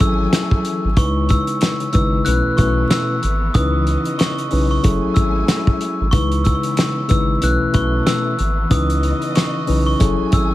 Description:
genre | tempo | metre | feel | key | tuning
hip hop, boom-bap hip-hop | 93 BPM | 4/4 | swing 59% on 16ths | C# minor | A4 = 440 Hz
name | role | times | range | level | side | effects
glockenspiel with hard plastic mallets | melody | 0.0-10.5 s | C#6 to F#6 | -23 LUFS | equal | ping-pong delay
mellow tine electric piano | accompaniment | 0.0-10.5 s | B2 to B4 | -20 LUFS | left 2 dB | slow stereo tremolo
warm studio string section | sustained chords | 0.0-10.5 s | C#3 to G#5 | -29 LUFS | equal | none
soft dub sub bass | bass | 0.0-10.5 s | F#1 to C#2 | -20 LUFS | equal | none
warm soul drum kit | drums | 0.0-10.5 s | hi-hat, kick drum, snare drum | -18 LUFS | equal | none
finger snap | percussion | 0.3-9.5 s | none | -35 LUFS | right 6 dB | none
room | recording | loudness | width
studio ambience | vinyl crackle | -15 LUFS | side -15 dB against mid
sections
0.0-10.5 A section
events
none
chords
0.0 F#m9; 1.0 C#m9; 2.3 B9sus4; 3.5 C#m9; 4.8 F#m9; 6.1 C#m9; 7.4 B9sus4; 8.7 C#m9; 10.0 F#m9

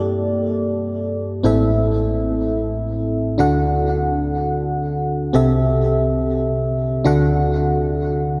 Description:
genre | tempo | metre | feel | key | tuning
pop | free time | none | none | D mixolydian | A4 = 435 Hz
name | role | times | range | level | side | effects
FM electric piano | solo | 0.0-8.4 s | A1 to F#5 | -19 LUFS | equal | chorus, diffuse ambient delay
room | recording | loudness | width
wet cathedral reverb, RT60 5.0 s | dreamy mix soaked in reverb | -19 LUFS | mono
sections
0.0-3.4 A section; 3.4-8.4 B section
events
none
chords
0.0 Gmadd9; 1.4 Am; 3.4 D; 5.3 C6; 7.1 D

